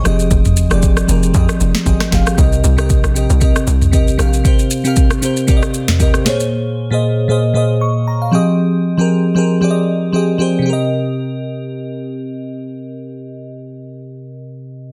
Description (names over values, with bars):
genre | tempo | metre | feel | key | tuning
amapiano | 116 BPM | 4/4 | swing 55% on 16ths | C minor | A4 = 440 Hz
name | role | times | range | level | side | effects
crystalline FM electric piano | accompaniment | 0.0-14.9 s | Bb2 to Db6 | -18 LUFS | equal | chorus, phaser
hollow log drum bass | bass | 0.1-4.4 s | F1 to F2 | -17 LUFS | equal | none
afro-pop drum kit | drums | 0.1-6.5 s | kick drum, rim click, shaker, snare drum, toms | -16 LUFS | equal | soft clipping on snare
room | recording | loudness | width
little or no reverb | dense, heavily limited modern master | -14 LUFS | mono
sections
0.0-10.7 A section; 10.7-14.8 B section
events
none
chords
0.1 Fm7; 2.4 Cm7; 6.3 Bbm7; 8.3 Fm7; 10.7 Cm7